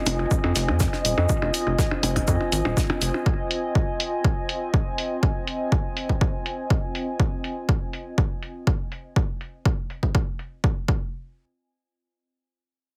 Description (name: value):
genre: minimal techno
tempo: 122 BPM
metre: 4/4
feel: straight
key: F minor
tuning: A4 = 440 Hz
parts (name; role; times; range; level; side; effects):
- warbly tape-like pad; texture; 0.0-7.2 s; C4 to Ab5; -31 LUFS; equal; chorus, built-in reverb, sidechain pumping
- rubbery square bass; bass; 0.1-3.1 s; Eb1 to F2; -27 LUFS; equal; sidechain pumping
- damped 70s drum kit; drums; 0.1-3.1 s; hi-hat, shaker, snare drum; -35 LUFS; equal; sidechain pumping on hats, high-pass filter on hats, high-pass filter on snare, sidechain pumping on perc, high-pass filter on perc, high-pass filter on room
- electronic hi-hat; drums; 0.1-10.5 s; none; -30 LUFS; equal; low-pass filter on hats, low-pass filter on room
- percussion blips; percussion; 0.1-3.2 s; none; -32 LUFS; equal; dub echo
- electronic kick drum; drums; 0.3-11.0 s; none; -25 LUFS; equal; none
room: moderate studio ambience, RT60 0.5 s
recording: heavily compressed radio sound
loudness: -24 LUFS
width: mono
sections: 0.0-11.1 A section; 11.1-13.0 B section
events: none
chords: 0.0 Fm7; 10.9 N.C.